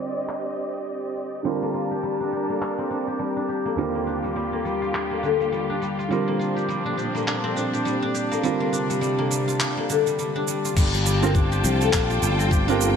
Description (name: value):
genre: organic downtempo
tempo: 103 BPM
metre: 4/4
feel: swing 58% on 16ths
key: G minor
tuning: A4 = 441 Hz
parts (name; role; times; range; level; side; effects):
- felt-muted upright piano; accompaniment; 0.0-13.0 s; Eb2 to Bb4; -29 LUFS; right 6 dB; sidechain pumping, digital delay
- rich symphonic string section; sustained chords; 0.0-13.0 s; Bb2 to A5; -28 LUFS; right 2 dB; sidechain pumping
- dusty soul sampler-style drum kit; drums; 0.0-12.9 s; crash cymbal, handclaps, shaker; -29 LUFS; right 1 dB; none
- guzheng; arpeggios; 1.4-13.0 s; D3 to G4; -25 LUFS; left 4 dB; digital delay
- sustaining fretless electric bass; bass; 10.8-13.0 s; G1 to C2; -23 LUFS; left 1 dB; sidechain pumping
- electronic kick drum; drums; 10.8-12.7 s; none; -21 LUFS; left 1 dB; none
room: moderate lush hall reverb, RT60 2.2 s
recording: low-pass filter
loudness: -21 LUFS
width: side -7 dB against mid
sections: 0.0-10.8 A section; 10.8-13.0 B section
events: filter sweep 0.0-10.8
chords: 0.0 Cm7; 1.4 Gm9; 3.8 Ebmaj9; 6.1 Bb6; 8.4 C5; 10.8 Gm9